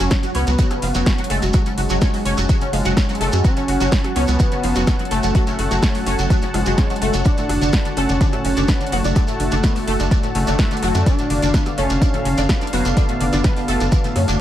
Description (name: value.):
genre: melodic techno.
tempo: 126 BPM.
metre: 4/4.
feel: straight.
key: F# harmonic minor.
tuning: A4 = 439 Hz.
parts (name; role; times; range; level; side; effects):
fat analog lead; melody; 0.0-14.4 s; G#3 to D4; -24 LUFS; equal; chorus, sidechain pumping, digital delay.
warm analog pad; sustained chords; 0.0-14.4 s; D3 to A5; -28 LUFS; left 1 dB; chorus, sidechain pumping.
analog pluck; arpeggios; 0.0-14.4 s; A2 to C#5; -23 LUFS; equal; ensemble chorus, sidechain pumping, ping-pong delay.
tight sequencer bass; bass; 0.0-14.4 s; F#1 to F#2; -21 LUFS; equal; sidechain pumping.
shekere; percussion; 0.0-14.4 s; none; -31 LUFS; right 3 dB; none.
impact; sound effects; 0.3-1.5 s; none; barely audible; none; none.
deep house drum kit; drums; 0.1-14.4 s; hi-hat, rim click, snare drum; -26 LUFS; equal; overdrive.
electronic kick drum; drums; 0.1-14.0 s; none; -17 LUFS; equal; overdrive.
room: little or no reverb.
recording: none.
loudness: -16 LUFS.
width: side -12 dB against mid.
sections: 0.0-14.4 A section.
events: impact 0.0-1.5.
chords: 0.0 F#m; 7.3 D/F#.